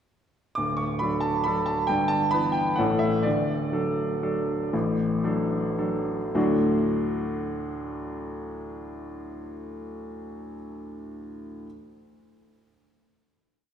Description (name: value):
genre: classical, piano waltz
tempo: 104-142 BPM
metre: 3/4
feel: rubato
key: D major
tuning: A4 = 444 Hz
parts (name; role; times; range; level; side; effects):
- bright baby grand piano; solo; 0.6-11.7 s; D1 to D6; -25 LUFS; equal; none
room: wet church reverb, RT60 2.6 s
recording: recorded in a church or concert hall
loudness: -23 LUFS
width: side -8 dB against mid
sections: 0.6-6.3 A section; 6.3-9.5 final chord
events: slowing down 2.6-6.3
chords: 0.6 D; 1.9 Em/G; 2.8 A; 3.2 D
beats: | 0.58 1.02 1.46 | 1.90 2.33 2.78 | 3.25 3.72 4.22 | 4.73 5.24 5.79 | 6.35 6.88 7.41 | 7.92 8.43 8.97